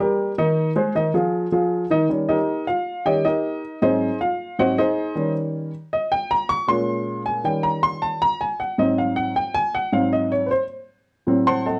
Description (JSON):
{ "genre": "jazz", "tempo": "157 BPM", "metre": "4/4", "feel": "straight", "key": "Eb mixolydian", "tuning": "A4 = 445 Hz", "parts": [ { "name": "warm baby grand piano", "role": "solo", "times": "0.0-11.8 s", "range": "Ab2 to Db6", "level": "-22 LUFS", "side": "equal", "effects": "none" } ], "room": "light reverb", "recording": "dark, warm production", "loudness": "-22 LUFS", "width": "mono", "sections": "0.0-2.1 A section; 2.1-11.8 B section", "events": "grand piano solo 2.1-11.8", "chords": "0.0 Eb; 0.6 Fm7; 1.3 Ebsus24; 2.1 Eb7; 3.6 Ab7; 5.2 Eb7; 6.7 Bbm7; 7.4 Eb7; 8.2 Ab7; 11.3 Adim7" }